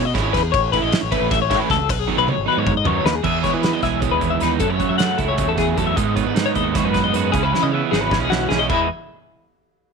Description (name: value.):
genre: math rock and midwest emo.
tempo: 308 BPM (eighths).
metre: 7/8.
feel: straight.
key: E major.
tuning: A4 = 440 Hz.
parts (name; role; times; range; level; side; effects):
twelve-string electric guitar; arpeggios; 0.0-8.9 s; E4 to F#5; -21 LUFS; left 13 dB; tremolo.
growling fingered electric bass; bass; 0.0-8.9 s; G#1 to F#3; -24 LUFS; equal; overdrive.
crunchy overdriven guitar; riff; 0.1-8.9 s; F#2 to E4; -24 LUFS; right 16 dB; none.
loose indie drum kit; drums; 0.1-8.8 s; crash cymbal, hi-hat, kick drum, ride cymbal, snare drum, toms; -24 LUFS; right 1 dB; none.
twelve-string electric guitar; accompaniment; 3.2-8.9 s; E2 to G#4; -24 LUFS; right 14 dB; none.
room: light reverb, small room ambience.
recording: 1960s-style stereo with parts hard left and right.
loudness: -16 LUFS.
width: side -5 dB against mid.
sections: 0.0-3.2 A section; 3.2-8.7 B section; 8.7-9.9 C section.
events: drum fill 2.1-3.2, 7.5-8.7.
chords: 0.0 C#m7; 0.5 A; 1.9 B; 3.2 Emaj7; 4.6 F#m7; 6.0 G#m7; 7.3 C#m7; 8.7 Emaj7.